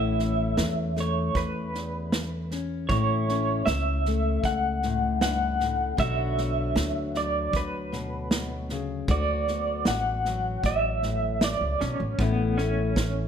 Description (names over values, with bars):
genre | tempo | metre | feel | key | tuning
acoustic folk duo or small band | 78 BPM | 4/4 | straight | D major | A4 = 440 Hz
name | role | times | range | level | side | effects
electric guitar through a small old amp | melody | 0.0-13.3 s | B3 to F#5 | -28 LUFS | right 1 dB | tremolo
fingerpicked steel-string acoustic guitar | accompaniment | 0.0-13.3 s | D2 to F#4 | -31 LUFS | left 5 dB | none
upright bass | bass | 0.0-13.3 s | A1 to E2 | -29 LUFS | equal | none
natural country drum kit | drums | 0.2-13.1 s | kick drum, snare drum | -29 LUFS | right 1 dB | none
room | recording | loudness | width
moderate large studio reverb, RT60 1.4 s | none | -24 LUFS | side -8 dB against mid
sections
0.0-12.2 A section; 12.2-13.3 B section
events
none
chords
0.0 Aadd9; 2.9 F#m7/A; 6.0 Bmadd11; 9.1 D6; 12.2 Aadd9